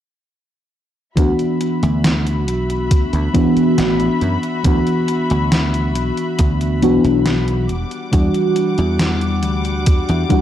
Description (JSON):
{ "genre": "vaporwave", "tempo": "69 BPM", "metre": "4/4", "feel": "straight", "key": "D major", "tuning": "A4 = 440 Hz", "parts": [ { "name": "mellow FM electric piano", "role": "accompaniment", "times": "1.2-10.4 s", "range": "E3 to F#4", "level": "-17 LUFS", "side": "equal", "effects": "phaser, analog chorus, tape echo" }, { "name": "dark studio string section", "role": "sustained chords", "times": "1.2-10.4 s", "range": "G3 to D6", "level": "-27 LUFS", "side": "left 3 dB", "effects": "none" }, { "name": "dry thumbed slap bass", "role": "bass", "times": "1.2-10.2 s", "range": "E1 to F#2", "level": "-19 LUFS", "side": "equal", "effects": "tube saturation" }, { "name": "electronic kick drum", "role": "drums", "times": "1.2-10.4 s", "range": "none", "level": "-15 LUFS", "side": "equal", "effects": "overdrive" }, { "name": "gated 80s digital drum machine", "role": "drums", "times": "1.2-10.4 s", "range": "hi-hat, snare drum", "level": "-21 LUFS", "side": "equal", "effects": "gated reverb, gated reverb snare, overdrive" } ], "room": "light reverb, digital ambience", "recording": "dry, gritty hardware recording", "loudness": "-14 LUFS", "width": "side -11 dB against mid", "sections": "1.2-10.4 A section", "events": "none", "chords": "1.2 D69; 7.7 Em9" }